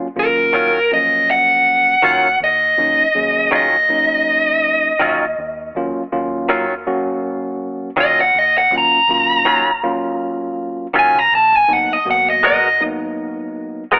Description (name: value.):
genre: blues.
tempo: 81 BPM.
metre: 4/4.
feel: swing 56% on 16ths.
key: Eb minor.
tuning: A4 = 440 Hz.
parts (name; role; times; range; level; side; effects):
tine electric piano; accompaniment; 0.0-13.8 s; F3 to Ab4; -25 LUFS; equal; none.
vintage muted fingered electric bass; bass; 0.0-14.0 s; Ab1 to Eb2; -40 LUFS; equal; none.
dark smooth lead guitar; melody; 0.2-12.8 s; Bb4 to Bb5; -15 LUFS; equal; overdrive.
direct-recorded clean electric guitar; stabs; 0.5-14.0 s; Eb3 to Bb4; -21 LUFS; equal; subtle chorus.
room: light reverb, digital ambience.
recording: telephone sound.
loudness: -16 LUFS.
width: mono.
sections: 0.0-14.0 A section.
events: none.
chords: 0.0 Ebm9; 11.7 Abm9.